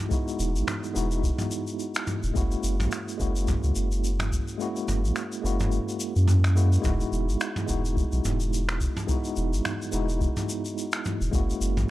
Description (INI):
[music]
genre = sunset chillout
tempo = 107 BPM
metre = 4/4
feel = swing 57% on 16ths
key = E lydian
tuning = A4 = 441 Hz
[part]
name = tine electric piano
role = accompaniment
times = 0.0-11.9 s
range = G#3 to F#4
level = -30 LUFS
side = moving between left 3 dB and right 4 dB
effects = overdrive, medium stereo tremolo, auto-pan, analog delay
[part]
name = electronic kick drum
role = drums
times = 0.1-11.5 s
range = none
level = -28 LUFS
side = equal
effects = none
[part]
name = soft brush drum kit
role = drums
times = 0.1-11.9 s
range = finger snaps, shaker, toms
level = -32 LUFS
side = equal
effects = none
[part]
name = warm sub bass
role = bass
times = 0.4-11.9 s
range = E1 to F#2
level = -25 LUFS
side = equal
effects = transformer saturation
[sound]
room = small room ambience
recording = dry, gritty hardware recording, transformer saturation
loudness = -24 LUFS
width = side -16 dB against mid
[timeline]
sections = 0.0-11.9 A section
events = kick drops out 4.6-6.8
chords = 0.0 Emaj9; 2.4 F#9; 6.8 Emaj9; 11.3 F#9